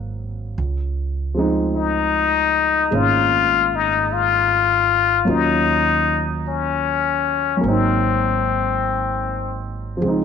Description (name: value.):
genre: jazz ballad.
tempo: 51 BPM.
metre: 4/4.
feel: swing 67% on 8ths.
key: Db major.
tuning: A4 = 441 Hz.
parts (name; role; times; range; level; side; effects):
warm baby grand piano; accompaniment; 0.0-10.2 s; F3 to F5; -23 LUFS; right 1 dB; none.
upright bass; bass; 0.0-10.2 s; Ab1 to Eb2; -25 LUFS; right 3 dB; none.
trumpet with plunger mute; melody; 1.8-9.6 s; C4 to F4; -18 LUFS; left 8 dB; none.
room: moderate spring reverb, RT60 2.5 s.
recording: none.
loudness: -16 LUFS.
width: side -7 dB against mid.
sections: 0.0-10.0 A section.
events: none.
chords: 0.0 Ab13; 0.6 Dbmaj9; 5.3 Ebm7; 7.6 Ab7.